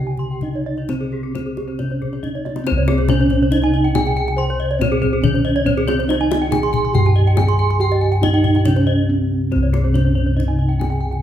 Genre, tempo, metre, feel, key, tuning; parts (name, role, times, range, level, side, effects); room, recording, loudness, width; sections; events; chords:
Balinese gamelan; 140 BPM; 4/4; straight; C pelog; A4 = 443 Hz
gamelan-type bronze metallophone; melody; 0.0-11.2 s; C4 to C5; -21 LUFS; right 2 dB
gamelan-type bronze metallophone; arpeggios; 0.0-11.1 s; G4-30c to C6; -27 LUFS; left 4 dB
gamelan-type bossed gongs; bass; 0.0-11.2 s; C2 to C5; -18 LUFS; equal
gamelan-type bronze metallophone; arpeggios; 0.1-11.2 s; G4-30c to C6; -25 LUFS; right 3 dB
kendang; percussion; 0.2-11.2 s; -24 LUFS; left 4 dB
wet large studio reverb, RT60 1.3 s; band playing live in one room; -15 LUFS; side -10 dB against mid
0.0-2.7 A section; 2.7-11.2 B section
drum fill 2.3-2.7, 9.2-9.5; break 8.9-9.5